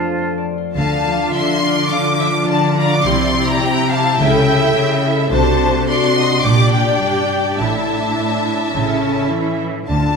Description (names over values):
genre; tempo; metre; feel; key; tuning
classical; 105 BPM; 4/4; straight; D minor; A4 = 440 Hz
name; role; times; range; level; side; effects
clear oboe; second line; 0.0-0.5 s; F4; -27 LUFS; right 2 dB; none
hollow silver concert flute; second line; 0.0-0.5 s; A5; -29 LUFS; left 2 dB; none
concert harp; arpeggios; 0.0-10.2 s; F2 to G5; -21 LUFS; left 9 dB; none
clear symphonic violin section; melody; 0.8-10.2 s; G5 to D6; -20 LUFS; left 3 dB; none
clear symphonic violin section; second line; 0.8-9.6 s; C5 to G5; -22 LUFS; left 2 dB; none
clear studio cello section; bass; 0.8-10.2 s; G2 to E3; -21 LUFS; right 3 dB; none
warm symphonic double bass section; bass; 0.8-10.2 s; A1 to D2; -21 LUFS; right 3 dB; none
rich symphonic viola section; accompaniment; 1.1-10.2 s; C#4 to A4; -20 LUFS; right 2 dB; none
room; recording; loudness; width
moderate scoring stage reverb, RT60 1.9 s; none; -14 LUFS; side -5 dB against mid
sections
0.8-10.2 A section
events
none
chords
0.0 Dm/F; 0.8 Dm; 3.1 C; 4.2 A7/C#; 5.3 D7/C; 6.4 Gm/Bb; 7.6 Asus4; 8.7 A